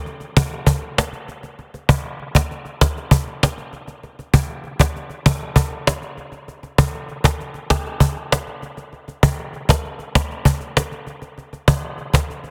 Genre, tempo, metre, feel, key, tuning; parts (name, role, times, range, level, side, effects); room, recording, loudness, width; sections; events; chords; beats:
indie pop; 98 BPM; 4/4; straight
cajon; drums; 0.1-12.5 s; -20 LUFS; equal
moderate spring reverb, RT60 2.8 s; dense, heavily limited modern master; -20 LUFS; mono
0.0-12.5 A section
0.06 0.67 1.28 | 1.89 2.50 3.12 3.73 | 4.34 4.95 5.56 6.17 | 6.79 7.40 8.01 8.62 | 9.23 9.84 10.45 11.06 | 11.68 12.29